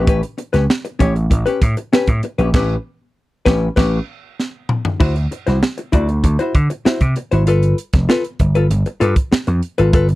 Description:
funk; 97 BPM; 4/4; straight; A mixolydian; A4 = 441 Hz
hollow-body jazz guitar; accompaniment; 0.0-10.1 s; C#4 to D5; -19 LUFS; left 3 dB
vintage slap bass; bass; 0.0-10.2 s; F1 to D3; -16 LUFS; equal
crisp fusion drum kit; drums; 0.1-10.2 s; crash cymbal, hi-hat, kick drum, snare drum, toms; -16 LUFS; right 1 dB
little or no reverb; dry, close 1970s-style studio recording; -14 LUFS; side -18 dB against mid
0.0-5.0 A section; 5.0-10.2 B section
band accent 2.5-5.0; drum fill 4.4-5.0
0.0 A9; 5.0 D9; 7.5 G9
| 0.07 0.69 1.30 1.92 | 2.54 3.15 3.77 4.39 | 5.00 5.62 6.24 6.86 | 7.47 8.09 8.70 9.32 | 9.93

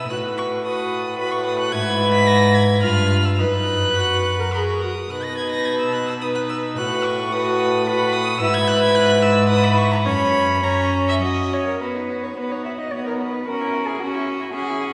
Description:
quick classical-period movement for string quartet; 102-113 BPM; 3/4; rubato; B major; A4 = 441 Hz
rich violin; melody; 0.0-14.9 s; D#5 to B6; -27 LUFS; equal
rich violin; second line; 0.0-14.9 s; D#4 to E5; -25 LUFS; equal
warm viola; accompaniment; 0.0-14.9 s; B3 to A#4; -27 LUFS; equal
warm cello; bass; 0.0-14.9 s; F#2 to E5; -25 LUFS; equal
wet concert hall reverb, RT60 2.1 s; recorded in a church or concert hall, nothing above 10.6 kHz; -20 LUFS; mono
0.0-11.8 A section; 11.8-14.9 B section
0.1 B7/A; 1.7 E/G#; 2.8 G7; 3.4 B/F#; 4.5 F#; 5.1 B; 6.8 B7/A; 8.4 E/G#; 10.1 F#; 11.8 B; 13.5 F#7/C#
| 0.11 0.66 1.20 | 1.74 2.28 2.83 | 3.40 3.98 4.54 | 5.11 5.67 6.23 | 6.79 7.34 7.88 | 8.42 8.96 9.51 | 10.07 10.64 11.23 | 11.81 12.37 12.93 | 13.47 14.00 14.54

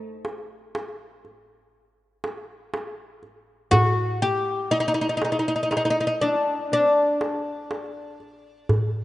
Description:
Arabic maqam ensemble; 120 BPM (eighths); 10/8; straight; A4 = 440 Hz
darbuka; percussion; 0.2-8.9 s; -25 LUFS; right 1 dB
oud; melody; 3.7-9.0 s; D4 to G4; -22 LUFS; left 1 dB
hollow-body jazz guitar; second line; 3.7-9.0 s; C4 to G4; -34 LUFS; left 3 dB
light reverb, small room ambience; rough home demo mix, nothing above 10.4 kHz; -22 LUFS; side -16 dB against mid
0.0-9.0 A section
0.24 0.74 1.24 1.74 2.23 2.73 3.23 | 3.73 4.22 4.72 5.22 5.72 6.21 6.71 7.21 7.71 8.21 | 8.70

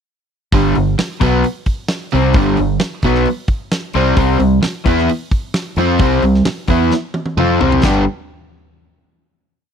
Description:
classic rock; 131 BPM; 4/4; straight; G mixolydian; A4 = 441 Hz
crunchy overdriven guitar; riff; 0.5-8.0 s; G2 to G4; -16 LUFS; left 12 dB
overdriven electric guitar; riff; 0.5-8.0 s; G2 to G4; -17 LUFS; right 11 dB
growling fingered electric bass; bass; 0.5-8.1 s; G1 to F2; -18 LUFS; equal; overdrive
big rock drum kit; drums; 0.5-7.9 s; hi-hat, kick drum, snare drum, splash cymbal, toms; -18 LUFS; equal
small room ambience; dry, close 1970s-style studio recording; -13 LUFS; side -7 dB against mid
0.5-7.8 riff; 7.8-9.7 final chord
drum fill 6.9-7.8
0.5 G; 4.2 C5; 7.8 G
| 0.52 0.98 1.44 1.90 | 2.35 2.81 3.27 3.73 | 4.18 4.64 5.10 5.56 | 6.01 6.47 6.93 7.39 | 7.85

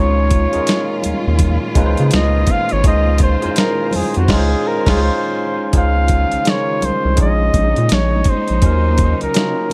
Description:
R&B, neo-soul; 83 BPM; 4/4; swing 61% on 16ths; Db major; A4 = 440 Hz
warm flugelhorn; melody; 0.0-9.7 s; Gb4 to F5; -22 LUFS; equal; tape echo
barky tine electric piano; accompaniment; 0.0-9.7 s; Gb3 to Db5; -23 LUFS; equal; overdrive, tape echo
warm studio string section; sustained chords; 0.0-9.7 s; Bb2 to C5; -29 LUFS; equal
round analog bass; bass; 0.0-9.3 s; Ab1 to Db3; -18 LUFS; equal
dusty soul sampler-style drum kit; drums; 0.3-9.7 s; crash cymbal, hi-hat, kick drum, snare drum; -19 LUFS; equal
congas; percussion; 0.7-9.7 s; -32 LUFS; equal
small room ambience; echo-heavy mix; -16 LUFS; mono
0.0-5.7 A section; 5.7-9.7 B section
flugelhorn solo 0.0-5.7; band accent 4.3-5.7
0.0 Dbmaj9; 7.2 Bbm7; 8.6 Ebm7
0.67 1.40 2.12 | 2.84 3.56 4.29 5.01 | 5.73 6.46 7.18 7.90 | 8.62 9.35

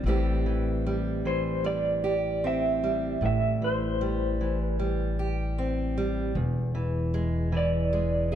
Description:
folk; 76 BPM; 4/4; straight; A minor; A4 = 440 Hz
fingerpicked steel-string acoustic guitar; accompaniment; 0.0-8.4 s; E2 to G#4; -29 LUFS; right 2 dB
upright bass; bass; 0.0-8.4 s; E1 to A1; -30 LUFS; left 1 dB
electric guitar through a small old amp; melody; 1.3-8.3 s; C5 to E5; -28 LUFS; right 1 dB; tremolo
light reverb; dark, warm production; -25 LUFS; side -10 dB against mid
0.0-8.4 A section
0.0 Am7; 6.4 E7
| 0.04 0.83 1.63 2.42 | 3.21 4.00 4.78 5.57 | 6.35 7.14 7.92

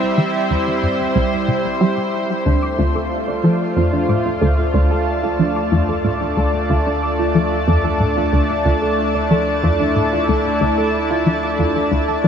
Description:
ambient, sequencer-driven space music; 92 BPM; 4/4; straight; D minor; A4 = 438 Hz
lush unison pad; sustained chords; 0.0-12.3 s; G3 to A5; -18 LUFS; equal; chorus
resonant blip pluck; riff; 0.2-12.3 s; C2 to G3; -19 LUFS; equal; chorus, ping-pong delay
soft round pluck; arpeggios; 2.5-12.3 s; D4 to D6; -24 LUFS; right 2 dB; chorus, auto-pan, ping-pong delay
round analog bass; bass; 2.5-12.3 s; D2; -28 LUFS; equal
wet shimmer reverb, RT60 6.9 s; -15 LUFS; side -8 dB against mid
0.0-12.3 A section
filter sweep on synth arpeggio sound 0.0-12.3
0.0 C; 2.5 Dm
0.51 1.16 1.81 | 2.46 3.11 3.77 4.42 | 5.07 5.72 6.38 7.03 | 7.68 8.33 8.98 9.63 | 10.29 10.94 11.59 12.24

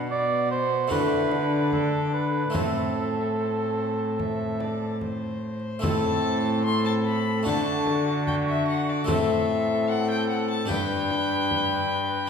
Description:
classical, renaissance-style consort dance; 74 BPM; 4/4; straight; A dorian; A4 = 440 Hz
warm violin; melody; 0.0-12.3 s; C5 to C6; -30 LUFS; left 4 dB
clear trombone; accompaniment; 0.0-12.3 s; B3 to E4; -32 LUFS; left 4 dB
harpsichord; accompaniment; 0.0-12.3 s; G2 to B4; -32 LUFS; left 2 dB
rich cello; bass; 0.0-12.3 s; G2 to D3; -28 LUFS; right 1 dB
warm cor anglais; second line; 0.1-12.3 s; F#4 to D5; -28 LUFS; right 2 dB
frame drum; percussion; 0.9-11.9 s; -33 LUFS; left 1 dB
wet recital hall reverb, RT60 1.5 s; recorded in a church or concert hall; -22 LUFS; side -6 dB against mid
0.0-5.8 A section; 5.8-12.3 A section
0.0 Bm; 0.9 D; 2.5 Am; 7.5 D; 9.1 Am; 10.7 G
0.10 0.91 1.72 | 2.54 3.37 4.19 5.01 | 5.83 6.65 7.46 8.27 | 9.08 9.89 10.70 11.51

